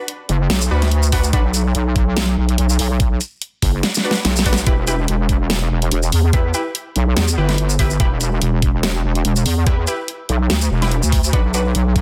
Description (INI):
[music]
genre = heavy wobble dubstep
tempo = 144 BPM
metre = 4/4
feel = swing 55% on 16ths, half-time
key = E minor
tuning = A4 = 440 Hz
[part]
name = dubstep drum kit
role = drums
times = 0.1-12.0 s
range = hi-hat, shaker, snare drum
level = -23 LUFS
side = equal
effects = none
[part]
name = wobble bass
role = bass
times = 0.3-12.0 s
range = E1 to E2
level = -19 LUFS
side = equal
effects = chorus, overdrive
[part]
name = orchestra-hit-like synth stab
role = stabs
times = 0.7-1.4, 4.0-11.6 s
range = D4 to B4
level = -27 LUFS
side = equal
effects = built-in reverb, delay
[part]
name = electronic kick drum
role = drums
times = 1.1-12.0 s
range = none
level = -20 LUFS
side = equal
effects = none
[sound]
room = little or no reverb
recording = dense, heavily limited modern master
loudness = -17 LUFS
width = mono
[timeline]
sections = 0.0-12.0 A section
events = drum fill 3.8-4.7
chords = 0.0 Bm; 4.7 Em; 11.3 Bm